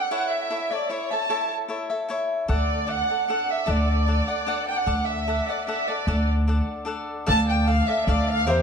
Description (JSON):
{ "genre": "mexican folk, mariachi", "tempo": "151 BPM", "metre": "3/4", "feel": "straight", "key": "D major", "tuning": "A4 = 441 Hz", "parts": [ { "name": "dark chamber violin section", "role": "melody", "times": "0.0-8.6 s", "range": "C5 to A5", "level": "-24 LUFS", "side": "right 1 dB", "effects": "none" }, { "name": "cavaquinho", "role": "accompaniment", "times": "0.0-8.6 s", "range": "D4 to G5", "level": "-29 LUFS", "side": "left 3 dB", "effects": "none" }, { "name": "upright bass", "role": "bass", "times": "2.5-8.6 s", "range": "D2 to E2", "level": "-23 LUFS", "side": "equal", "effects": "none" } ], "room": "moderate recital hall reverb, RT60 1.8 s", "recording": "dark, warm production", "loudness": "-22 LUFS", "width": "side -6 dB against mid", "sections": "0.0-7.3 A section; 7.3-8.6 B section", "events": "none", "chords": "0.1 A; 2.5 D; 7.3 Dm" }